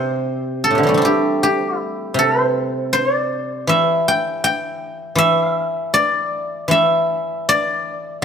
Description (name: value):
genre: chinese traditional, Chinese solo plucked strings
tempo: 78 BPM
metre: 4/4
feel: rubato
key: G zhi mode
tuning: A4 = 441 Hz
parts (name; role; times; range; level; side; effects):
- guzheng; solo; 0.0-8.2 s; A2 to G5; -16 LUFS; equal; none
room: light reverb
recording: close, detailed microphones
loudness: -16 LUFS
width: side -7 dB against mid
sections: 0.0-8.2 A section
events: none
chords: none